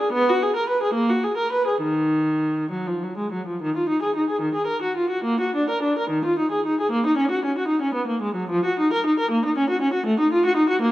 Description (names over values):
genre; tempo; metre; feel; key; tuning
classical, baroque-style suite movement for unaccompanied viola; 66-81 BPM (dotted quarters); 6/8; rubato; Eb minor; A4 = 439 Hz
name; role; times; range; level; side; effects
warm viola; solo; 0.0-10.9 s; Eb3 to Cb5; -20 LUFS; equal; none
room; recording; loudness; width
wet recital hall reverb, RT60 1.7 s; dark, warm production; -20 LUFS; side -15 dB against mid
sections
0.0-3.6 A section; 3.6-10.9 B section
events
none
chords
none